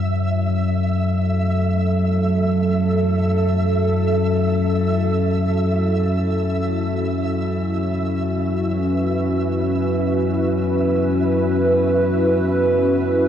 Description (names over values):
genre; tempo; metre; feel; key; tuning
dark ambient drone; free time; none; none; F# minor; A4 = 441 Hz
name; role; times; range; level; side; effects
dark analog pad; sustained chords; 0.0-13.3 s; C#4 to B4; -21 LUFS; right 1 dB; chorus
deep rumbling drone; drone; 0.0-13.3 s; F#2 to F#3; -20 LUFS; left 1 dB; built-in reverb, phaser
flickering grainy texture; texture; 0.0-13.3 s; E5; -29 LUFS; right 2 dB; built-in reverb, shimmer reverb
room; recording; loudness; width
wet huge ambient reverb, RT60 7.7 s; in a vast, echoing space; -17 LUFS; side -9 dB against mid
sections
0.0-13.3 A section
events
none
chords
0.0 F#m